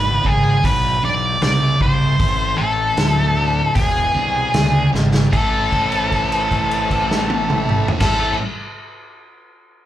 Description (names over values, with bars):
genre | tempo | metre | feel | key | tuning
blues rock power trio and southern rock | 77 BPM | 4/4 | straight | A minor | A4 = 437 Hz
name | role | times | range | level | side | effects
octave-fuzz lead guitar | melody | 0.0-8.3 s | G#4 to D5 | -19 LUFS | left 1 dB | distortion, slapback echo
overdriven tonewheel organ | sustained chords | 0.0-8.4 s | G#3 to G5 | -31 LUFS | right 2 dB | slow rotary speaker, chorus vibrato
thick fuzz guitar | riff | 0.0-8.4 s | E2 to A3 | -21 LUFS | right 1 dB | distortion
fuzz fingered electric bass | bass | 0.0-8.3 s | E1 to D2 | -22 LUFS | equal | overdrive
vintage drum kit | drums | 0.2-8.2 s | crash cymbal, hi-hat, kick drum, snare drum, toms | -22 LUFS | equal | none
room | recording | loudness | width
light reverb | live gig heard through the venue's PA, club reverb | -15 LUFS | side -12 dB against mid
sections
0.0-5.3 A section; 5.3-8.5 B section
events
drum fill 4.9-5.3; held note 5.3-8.0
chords
0.0 E7#9; 2.2 Am; 3.8 E7#9; 5.3 Am